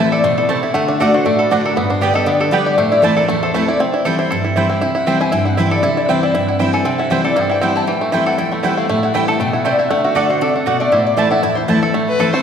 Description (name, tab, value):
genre	bluegrass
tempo	236 BPM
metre	4/4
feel	swing 55% on 8ths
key	unclear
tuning	A4 = 441 Hz
part	bluegrass banjo	melody	0.0-12.4 s	E3 to A4	-19 LUFS	right 2 dB	none
part	lap resonator guitar	second line	0.0-11.6 s	E4 to A5	-18 LUFS	left 2 dB	none
part	picked steel-string acoustic guitar	accompaniment	0.0-12.4 s	E2 to G4	-18 LUFS	left 1 dB	none
part	mandolin	stabs	0.0-12.3 s	A3 to A5	-22 LUFS	right 4 dB	none
part	dark fiddle	melody	12.1-12.4 s	B4 to C5	-17 LUFS	left 6 dB	none
room	wet scoring stage reverb, RT60 2.2 s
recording	recorded in a church or concert hall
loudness	-13 LUFS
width	side -7 dB against mid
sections	0.0-3.8 A section; 3.8-11.9 A section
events	resonator guitar played with a steel bar solo 0.0-11.9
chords	0.0 Am; 0.7 D; 1.8 G; 2.8 Am; 3.8 C; 7.9 Am7; 9.9 D; 10.9 Am